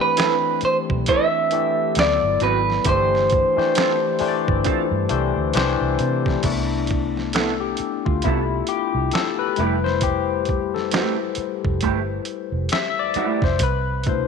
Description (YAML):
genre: R&B, neo-soul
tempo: 67 BPM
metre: 4/4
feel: swing 58% on 16ths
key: C major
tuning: A4 = 439 Hz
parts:
  - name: electric guitar through a small old amp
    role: melody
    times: 0.0-5.5 s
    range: B4 to E5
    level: -20 LUFS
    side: right 3 dB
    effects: none
  - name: barky tine electric piano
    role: accompaniment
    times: 0.0-14.3 s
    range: B2 to E5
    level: -22 LUFS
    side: left 11 dB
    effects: overdrive, analog chorus
  - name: electric guitar through a small old amp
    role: second line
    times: 0.2-13.4 s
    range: A3 to B4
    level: -27 LUFS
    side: right 14 dB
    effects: analog chorus
  - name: boom bap sampler-style drum kit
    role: drums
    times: 0.2-14.3 s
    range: crash cymbal, finger snaps, hi-hat, kick drum, snare drum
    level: -25 LUFS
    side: right 2 dB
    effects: none
  - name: vintage muted fingered electric bass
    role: bass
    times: 0.6-14.3 s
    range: F1 to C3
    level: -25 LUFS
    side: right 2 dB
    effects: none
room: light reverb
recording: 1960s-style stereo with parts hard left and right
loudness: -18 LUFS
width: side -6 dB against mid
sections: 0.0-6.4 A section; 6.4-14.3 B section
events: tine electric piano solo 6.4-14.3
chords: 0.0 Cmaj13; 2.0 D69; 2.9 Gsus4; 5.5 C; 6.4 Cmaj13; 9.6 Fmaj9; 13.6 Cmaj13